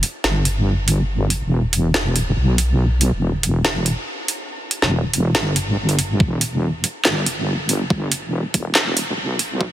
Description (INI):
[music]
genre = deep dubstep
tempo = 141 BPM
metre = 4/4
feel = half-time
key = E minor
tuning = A4 = 440 Hz
[part]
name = garage drum kit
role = drums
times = 0.0-9.5 s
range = handclaps, hi-hat, snare drum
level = -21 LUFS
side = right 1 dB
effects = overdrive, studio reverb
[part]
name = wobble bass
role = bass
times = 0.2-9.7 s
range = E1 to B1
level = -19 LUFS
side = equal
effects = chorus
[part]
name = electronic kick drum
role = drums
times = 6.2-9.7 s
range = none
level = -18 LUFS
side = equal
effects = overdrive, studio reverb
[sound]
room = light reverb, digital ambience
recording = dense, heavily limited modern master, high-pass filter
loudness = -17 LUFS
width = side -12 dB against mid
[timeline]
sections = 0.0-9.7 A section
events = build-up 0.0-9.7; filter sweep 0.0-9.7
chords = none